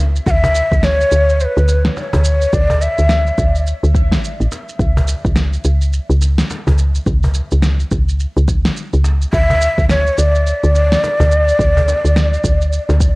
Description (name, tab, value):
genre	organic downtempo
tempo	106 BPM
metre	4/4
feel	swing 60% on 16ths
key	unclear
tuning	A4 = 442 Hz
part	woody FM bass	bass	0.0-13.2 s	A1 to D2	-14 LUFS	equal	sidechain pumping
part	electronic shaker and snare drum	drums	0.2-13.1 s	none	-21 LUFS	equal	none
part	breathy mellow ney	melody	0.3-3.7, 9.3-13.2 s	B4 to F#5	-17 LUFS	equal	tape echo
part	electronic kick drum	drums	0.3-13.1 s	none	-17 LUFS	equal	none
part	cajon	percussion	0.4-13.0 s	none	-23 LUFS	equal	none
room	light reverb, digital ambience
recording	worn, warbling old tape, cassette tape, warbly pitch drift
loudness	-12 LUFS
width	side -24 dB against mid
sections	0.0-13.2 A section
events	none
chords	0.3 Dsus2; 4.8 N.C.